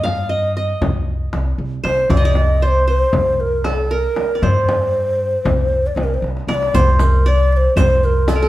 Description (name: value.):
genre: Turkish makam ensemble.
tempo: 233 BPM (eighths).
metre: 9/8.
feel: straight.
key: C makam huseyni.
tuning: A4 = 440 Hz.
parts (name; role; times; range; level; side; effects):
breathy low ney; melody; 0.0-8.5 s; A4-35c to F5; -19 LUFS; equal; none.
qanun; second line; 0.0-8.5 s; A4-30c to F5; -23 LUFS; right 2 dB; none.
upright bass; bass; 0.0-8.5 s; C2 to G2; -18 LUFS; equal; none.
darbuka; percussion; 0.0-8.4 s; none; -25 LUFS; left 1 dB; none.
frame drum; percussion; 0.1-8.4 s; none; -23 LUFS; left 1 dB; none.
riq; percussion; 6.7-8.4 s; none; -30 LUFS; right 4 dB; none.
room: wet large studio reverb, RT60 1.1 s.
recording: band playing live in one room.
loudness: -14 LUFS.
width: side -15 dB against mid.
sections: 0.0-6.7 A section; 6.7-8.5 B section.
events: drum fill 6.2-6.7.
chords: none.